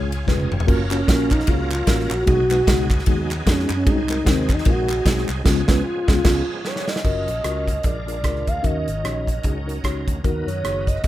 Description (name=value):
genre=uptempo gospel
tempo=150 BPM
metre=4/4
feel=swing 58% on 8ths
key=F# major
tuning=A4 = 441 Hz
part: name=mellow tine electric piano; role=accompaniment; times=0.0-11.1 s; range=G#2 to C#5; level=-26 LUFS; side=left 2 dB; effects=medium stereo tremolo
part: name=bright tonewheel organ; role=sustained chords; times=0.0-11.1 s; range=E#3 to D#5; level=-32 LUFS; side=right 2 dB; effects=fast rotary speaker, overdrive, chorus vibrato
part: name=fingered electric bass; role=bass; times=0.0-11.1 s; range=E1 to F#2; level=-26 LUFS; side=equal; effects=none
part: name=modern studio drum kit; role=drums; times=0.1-11.1 s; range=crash cymbal, hi-hat, kick drum, ride cymbal, rim click, snare drum, toms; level=-21 LUFS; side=equal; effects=none
part: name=gliding portamento lead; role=melody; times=0.9-11.1 s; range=B#3 to E#5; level=-24 LUFS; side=right 1 dB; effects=chorus, slapback echo
part: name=group handclap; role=percussion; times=0.9-5.4 s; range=none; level=-33 LUFS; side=right 2 dB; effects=none
room=light reverb, studio reverb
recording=rough home demo mix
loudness=-18 LUFS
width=side -14 dB against mid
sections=0.0-7.1 A section; 7.1-11.1 B section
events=drum fill 0.3-0.7, 6.7-7.1; band accent 5.5-7.1; tine electric piano fill 6.3-7.1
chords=0.0 C#; 0.7 F#maj7; 2.3 B6; 3.9 G#7/B#; 5.5 C#7; 7.1 F#maj7; 7.8 A#7; 8.6 D#m7; 10.2 Bmaj7/D#